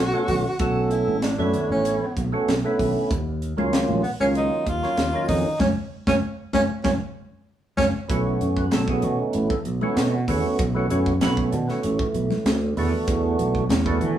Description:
electric jazz fusion; 96 BPM; 4/4; straight; B minor from 8.1 s; A4 = 439 Hz
breathy tenor saxophone; melody; 0.0-7.9 s; Cb4 to F#4; -25 LUFS; equal
percussive tonewheel organ; accompaniment; 0.0-14.2 s; D3 to C#5; -25 LUFS; right 2 dB; slow rotary speaker, overdrive
sustaining fretless electric bass; bass; 0.0-14.1 s; Gb1 to E3; -25 LUFS; right 1 dB
crisp fusion drum kit; drums; 0.3-14.2 s; hi-hat, kick drum, snare drum; -27 LUFS; equal
congas; percussion; 0.3-14.2 s; -28 LUFS; left 1 dB
moderate studio reverb, RT60 0.9 s; band playing live in one room; -20 LUFS; side -11 dB against mid
0.0-8.1 A section; 8.1-14.2 B section
band accent 5.6-8.1; drum fill 7.5-8.1
0.0 Bm9; 3.1 Ebm9; 5.6 Gb; 8.1 B9sus4; 12.8 E9sus4
| 0.60 1.23 1.85 2.48 | 3.10 3.73 4.36 4.98 | 5.61 6.23 6.85 7.48 | 8.10 8.73 9.35 9.97 | 10.59 11.22 11.84 12.46 | 13.08 13.70

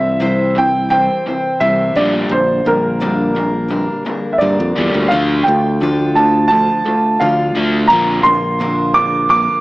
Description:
rock; 86 BPM; 4/4; straight; D minor; A4 = 440 Hz
dark grand piano; melody; 0.0-9.6 s; Bb4 to D6; -15 LUFS; right 1 dB
picked steel-string acoustic guitar; accompaniment; 0.0-9.6 s; Bb2 to C5; -21 LUFS; left 1 dB
crunchy overdriven guitar; riff; 0.0-9.6 s; Bb2 to D4; -21 LUFS; equal
modern bright fingered electric bass; bass; 0.0-9.5 s; Bb1 to G2; -19 LUFS; equal
moderate plate reverb, RT60 3.0 s; small speaker sound; -12 LUFS; side -19 dB against mid
0.0-9.6 A section
0.0 C; 2.0 Gm/Bb; 5.1 Dm; 7.9 Bb
0.21 0.91 1.61 | 2.31 3.00 3.70 4.40 | 5.10 5.80 6.49 7.19 | 7.89 8.59 9.29

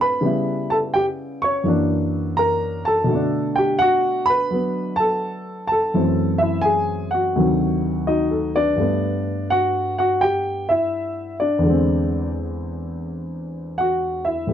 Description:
solo jazz; 84 BPM; 4/4; swing 67% on 8ths; G major from 8.8 s; A4 = 442 Hz
dark grand piano; solo; 0.0-14.5 s; D2 to C#6; -18 LUFS; equal
light reverb; dark, warm production; -18 LUFS; side -9 dB against mid
0.0-8.8 A section; 8.8-14.5 B section
0.2 C#m7b5; 1.7 F#7alt; 3.1 Bm7; 5.9 F#m7b5; 7.4 D7b9; 8.8 Gmaj9; 11.6 E7b13
| 0.23 0.95 1.66 2.37 | 3.08 3.80 4.51 5.22 | 5.93 6.65 7.36 8.07 | 8.78 9.50 10.21 10.92 | 11.64 12.35 13.06 13.77 | 14.49

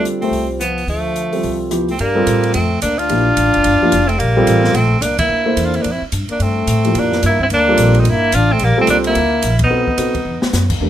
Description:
modal jazz; 218 BPM; 4/4; swing 61% on 8ths; G dorian; A4 = 440 Hz
clear tenor saxophone; melody; 0.0-10.5 s; A3 to F4; -17 LUFS; right 2 dB
mellow trombone; second line; 0.0-10.5 s; F3 to D4; -20 LUFS; left 3 dB
warm concert grand piano; accompaniment; 0.0-10.9 s; F3 to C5; -18 LUFS; right 1 dB
upright bass; bass; 0.0-10.9 s; F1 to A2; -18 LUFS; equal
open jazz drum kit; drums; 0.1-10.8 s; crash cymbal, hi-hat, kick drum, ride cymbal, rim click, snare drum; -25 LUFS; equal
light reverb; minimal, uncompressed stereo recording; -13 LUFS; side -11 dB against mid
0.0-2.0 A section; 2.0-10.8 B section
band accent 5.2, 9.6; drum fill 10.3
0.0 F; 2.0 Gm9; 9.7 B7b9
0.06 0.33 0.61 | 0.89 1.16 1.44 1.72 | 1.99 2.27 2.54 2.82 | 3.09 3.37 3.65 3.92 | 4.20 4.47 4.75 5.02 | 5.30 5.58 5.85 6.13 | 6.40 6.68 6.95 7.23 | 7.50 7.78 8.05 8.33 | 8.61 8.88 9.16 9.43 | 9.71 9.98 10.26 10.53 | 10.81

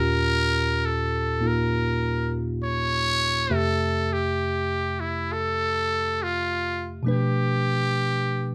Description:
jazz ballad; 67 BPM; 4/4; swing 67% on 8ths; F major; A4 = 441 Hz
trumpet with metal mute; melody; 0.0-8.5 s; E4 to Db5; -27 LUFS; equal
bell-like tine electric piano; accompaniment; 0.0-8.5 s; Eb2 to E5; -28 LUFS; equal
moderate studio reverb, RT60 0.6 s; -25 LUFS; mono
0.0-8.5 A section
0.0 Eb9; 3.5 Fmaj9; 7.1 Bm7b5
0.83 1.72 2.61 | 3.50 4.38 5.27 6.17 | 7.06 7.95

